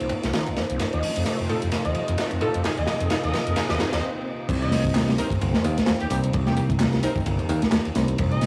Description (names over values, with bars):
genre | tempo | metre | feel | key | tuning
breakbeat, breaks | 130 BPM | 4/4 | swing 57% on 16ths | C minor | A4 = 442 Hz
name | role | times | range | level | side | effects
dark analog pad | sustained chords | 0.0-8.5 s | C3 to Eb5 | -34 LUFS | equal | chorus, sidechain pumping
overdriven acid bass | riff | 0.0-8.5 s | C2 to A3 | -31 LUFS | equal | distortion, subtle chorus, cassette tape, tape echo
garage drum kit | drums | 0.0-8.5 s | handclaps, hi-hat | -40 LUFS | equal | high-pass filter on hats, high-pass filter on snare
riser and swell | sound effects | 1.1-4.5 s | none | -39 LUFS | equal | none
crunchy breakbeat drum kit | drums | 0.1-8.5 s | crash cymbal, hi-hat, kick drum, ride cymbal, snare drum | -28 LUFS | equal | high-pass filter on kick, high-pass filter on cymbals, high-pass filter on hats, high-pass filter on snare, high-pass filter on room
plucky unison lead | melody | 0.9-8.5 s | G4 to Eb5 | -33 LUFS | equal | telephone sound, tape echo
orchestra-hit-like synth stab | stabs | 1.5-7.2 s | C4 to Bb4 | -34 LUFS | equal | built-in reverb, cassette tape, tape echo
picked electric bass | bass | 4.5-8.5 s | G1 to Eb2 | -26 LUFS | equal | none
room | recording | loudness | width
light reverb, studio ambience | dry, gritty hardware recording, vinyl crackle | -24 LUFS | mono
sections
0.0-4.5 A section; 4.5-8.5 B section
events
build-up 0.0-4.5; filter sweep on acid bass 0.0-4.5; filter sweep on synth stab 0.0-4.5; filter sweep on digital synth lead 0.0-4.5; drum fill 0.8-4.0; swell 3.6-4.5; break 4.0-4.5; drop 4.5-8.5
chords
0.0 Cm7; 0.8 F7; 2.6 Bbsus4; 4.5 Cm7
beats
0.34 | 0.80 1.26 1.72 2.19 | 2.65 3.11 3.57 4.03 | 4.49 4.96 5.42 5.88 | 6.34 6.80 7.26 7.72 | 8.19